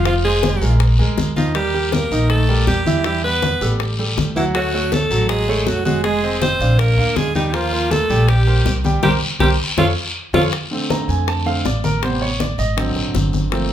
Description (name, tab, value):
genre	Afro-Cuban jazz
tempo	160 BPM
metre	4/4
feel	straight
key	Bb major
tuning	A4 = 439 Hz
part	edgy alto saxophone	melody	0.0-10.4 s	Eb4 to C5	-21 LUFS	equal	none
part	breathy tenor saxophone	second line	0.0-10.4 s	Eb3 to C4	-26 LUFS	right 5 dB	none
part	clear baby grand piano	accompaniment	0.0-13.7 s	C3 to Bb5	-22 LUFS	right 2 dB	none
part	upright bass	bass	0.0-13.7 s	F1 to F2	-19 LUFS	equal	none
part	bongos	percussion	0.1-13.7 s	none	-26 LUFS	left 7 dB	none
part	congas	percussion	0.1-13.7 s	none	-23 LUFS	left 2 dB	none
part	guiro	percussion	0.1-13.7 s	none	-28 LUFS	left 2 dB	none
room	moderate large studio reverb, RT60 0.8 s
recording	band playing live in one room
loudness	-15 LUFS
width	side -10 dB against mid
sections	0.0-10.5 A section; 10.5-13.7 B section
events	drum fill 9.0-10.5; band accent 9.0-10.5; grand piano solo 10.5-13.7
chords	0.1 Fm; 0.8 Bb7; 1.6 Eb; 3.1 Em; 3.8 Em11/A; 4.5 Dmaj7; 6.0 Fm7; 6.8 Bb; 7.5 Eb69; 9.0 C5; 9.8 Faug; 10.5 Bbmaj9; 12.0 Am7; 12.8 Ab7#11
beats	| 0.06 0.43 0.81 1.18 | 1.56 1.93 2.30 2.68 | 3.05 3.43 3.80 4.17 | 4.55 4.92 5.30 5.67 | 6.04 6.42 6.79 7.17 | 7.54 7.91 8.29 8.66 | 9.04 9.41 9.78 10.16 | 10.53 10.90 11.28 11.65 | 12.03 12.40 12.78 13.15 | 13.52